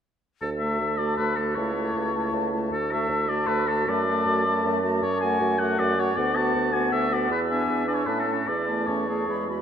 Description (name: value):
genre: quick classical-period movement for wind quintet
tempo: 157 BPM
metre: 3/4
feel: rubato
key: D major, A major from 5.0 s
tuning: A4 = 445 Hz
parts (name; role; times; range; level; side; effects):
- warm oboe; second line; 0.4-9.5 s; A4 to A5; -26 LUFS; left 2 dB; none
- dark bassoon; bass; 0.4-9.6 s; C#2 to A2; -28 LUFS; right 3 dB; none
- concert flute; melody; 0.6-9.6 s; F#5 to B5; -31 LUFS; left 6 dB; none
- clear French horn; accompaniment; 0.6-9.6 s; G#3 to B3; -31 LUFS; equal; none
- clear clarinet; accompaniment; 0.6-9.6 s; C#4 to G#4; -33 LUFS; right 4 dB; none
room: wet cathedral reverb, RT60 5.5 s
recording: in a vast, echoing space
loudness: -22 LUFS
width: side -8 dB against mid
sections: 0.4-9.6 A section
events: none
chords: 0.4 D; 1.6 A/C#; 2.7 D; 3.9 D/F#; 6.2 Bm/D; 7.3 E7; 8.1 A; 8.5 A/E